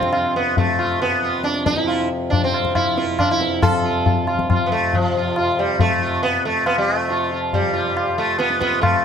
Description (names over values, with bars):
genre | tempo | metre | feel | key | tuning
indian classical, Hindustani | 138 BPM | 3/4 | straight | F raga yaman | A4 = 439 Hz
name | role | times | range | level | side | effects
sitar | melody | 0.0-9.0 s | F3 to A4 | -20 LUFS | right 2 dB | none
hand-pumped harmonium | drone | 0.0-9.0 s | F2 to C3 | -27 LUFS | left 2 dB | none
tabla | percussion | 0.0-9.0 s | none | -21 LUFS | left 3 dB | none
room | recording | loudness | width
moderate concert hall reverb, RT60 2.3 s | close, detailed microphones | -17 LUFS | side -7 dB against mid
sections
0.0-8.8 A section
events
none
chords
none